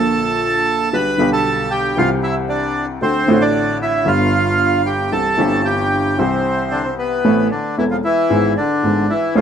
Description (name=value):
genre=tango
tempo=114 BPM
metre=4/4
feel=rubato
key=C major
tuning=A4 = 441 Hz
part: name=bandoneon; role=melody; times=0.0-9.4 s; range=C3 to B5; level=-17 LUFS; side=right 1 dB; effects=none
part: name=warm upright piano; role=accompaniment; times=0.0-9.4 s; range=E1 to A4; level=-17 LUFS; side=equal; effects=none
room=moderate stone room reverb, RT60 1.2 s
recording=band playing live in one room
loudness=-14 LUFS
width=side -8 dB against mid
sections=0.0-7.2 A section; 7.2-9.4 B section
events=none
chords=0.0 Bb; 0.9 G/B; 2.0 C; 3.0 D7; 4.1 G7; 5.1 C; 7.2 Amadd9; 8.3 E/G#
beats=0.40 | 0.92 1.45 1.97 2.49 | 3.01 3.54 4.06 4.59 | 5.12 5.65 6.18 6.71 | 7.24 7.77 8.30 8.83 | 9.36